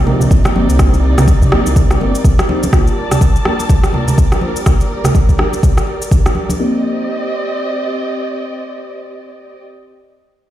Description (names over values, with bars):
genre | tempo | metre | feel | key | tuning
afro house | 124 BPM | 4/4 | swing 59% on 16ths | C dorian | A4 = 440 Hz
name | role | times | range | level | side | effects
dark studio string section | sustained chords | 0.0-9.6 s | C3 to A5 | -22 LUFS | right 1 dB | sidechain pumping
deep mellow chord stab | stabs | 0.0-9.6 s | Bb3 to C5 | -21 LUFS | left 2 dB | chorus, phaser, cassette tape, sidechain pumping, digital delay
dark detuned saw bass | bass | 0.0-2.1 s | G1 to C2 | -14 LUFS | equal | sidechain pumping
congas | percussion | 0.1-6.6 s | none | -19 LUFS | right 1 dB | none
electronic shaker and rim click | drums | 0.2-6.6 s | none | -20 LUFS | right 1 dB | none
electronic kick drum | drums | 0.3-6.2 s | none | -11 LUFS | equal | none
room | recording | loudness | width
light reverb, digital ambience | played on a big sound system in a bare room, stone room reverb | -11 LUFS | side -13 dB against mid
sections
0.0-6.6 A section; 6.6-10.5 B section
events
none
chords
0.0 Cm7; 2.7 Gm7; 6.6 Cm7